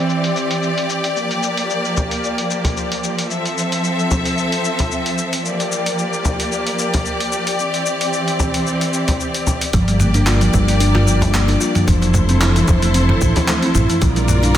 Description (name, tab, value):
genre	organic downtempo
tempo	112 BPM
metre	4/4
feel	swing 54% on 16ths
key	G dorian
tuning	A4 = 443 Hz
part	rich studio string section	sustained chords	0.0-14.6 s	E3 to E5	-19 LUFS	equal	sidechain pumping
part	dusty soul sampler-style drum kit	drums	0.1-14.6 s	handclaps, hi-hat, shaker, toms	-22 LUFS	equal	low-pass filter on perc, low-pass filter on hats, low-pass filter on toms, low-pass filter on snare
part	frame drum	percussion	2.0-13.5 s	none	-22 LUFS	equal	none
part	kalimba	arpeggios	9.7-14.6 s	E3 to F4	-18 LUFS	equal	digital delay
part	mellow fretless electric bass	bass	9.7-14.6 s	F1 to Bb1	-16 LUFS	equal	tube saturation, ensemble chorus, sidechain pumping
part	electronic kick drum	drums	9.7-14.1 s	none	-19 LUFS	equal	none
room	moderate lush hall reverb, RT60 2.6 s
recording	dense, heavily limited modern master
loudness	-15 LUFS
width	side -11 dB against mid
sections	0.0-9.7 A section; 9.7-14.6 B section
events	none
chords	0.0 Cadd9; 1.2 Gm7; 3.3 Fmaj7; 5.4 Bb6; 7.6 Cadd9; 9.7 Gm7; 11.9 Fmaj7; 14.0 Bb6